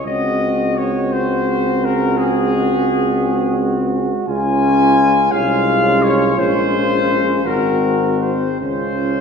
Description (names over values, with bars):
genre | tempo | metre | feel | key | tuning
classical, hymn-like piece for brass band | 57 BPM (dotted quarters) | 12/8 | rubato | unclear | A4 = 436 Hz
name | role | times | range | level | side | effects
clear trumpet section | melody | 0.0-9.2 s | Ab4 to Ab5 | -18 LUFS | left 4 dB | none
warm euphonium | accompaniment | 0.0-9.2 s | Ab3 | -23 LUFS | right 2 dB | none
warm flugelhorn | second line | 0.1-9.2 s | F4 to Gb4 | -22 LUFS | right 5 dB | none
clear trombone section | accompaniment | 0.1-9.2 s | C4 to Db4 | -21 LUFS | left 2 dB | none
warm tuba | bass | 0.1-9.2 s | Ab1 to Db2 | -22 LUFS | right 1 dB | none
room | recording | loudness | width
wet scoring stage reverb, RT60 1.9 s | heard from further back in the room, nothing above 10.4 kHz | -14 LUFS | side -6 dB against mid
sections
0.0-9.2 A section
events
none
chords
0.1 Ab7/Db; 4.3 Db; 6.4 Bbm7; 7.4 Ab9; 8.6 Db